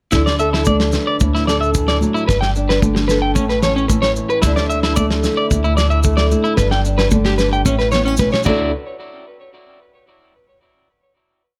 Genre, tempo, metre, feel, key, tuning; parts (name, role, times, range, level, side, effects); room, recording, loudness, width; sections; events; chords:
highlife guitar band; 112 BPM; 4/4; straight; A4 = 436 Hz
fingerpicked steel-string acoustic guitar; accompaniment; 0.1-8.7 s; G2 to B4; -23 LUFS; equal
electric guitar at the edge of break-up; arpeggios; 0.1-8.7 s; C#4 to G5; -22 LUFS; equal; tape echo
upright bass; bass; 0.1-8.7 s; G1 to D2; -22 LUFS; equal
warm soul drum kit; drums; 0.1-8.6 s; crash cymbal, kick drum, snare drum; -22 LUFS; equal
congas; percussion; 0.1-8.7 s; -24 LUFS; equal
maracas; percussion; 0.1-8.7 s; -33 LUFS; equal
light reverb, small room ambience; -16 LUFS; mono
0.1-8.7 groove; 8.7-10.9 final hit
0.1 Dadd9; 2.3 Gadd9; 3.4 Aadd9; 4.4 Dsus2; 6.6 G; 7.7 Aadd9; 8.5 Dadd9; 8.7 N.C.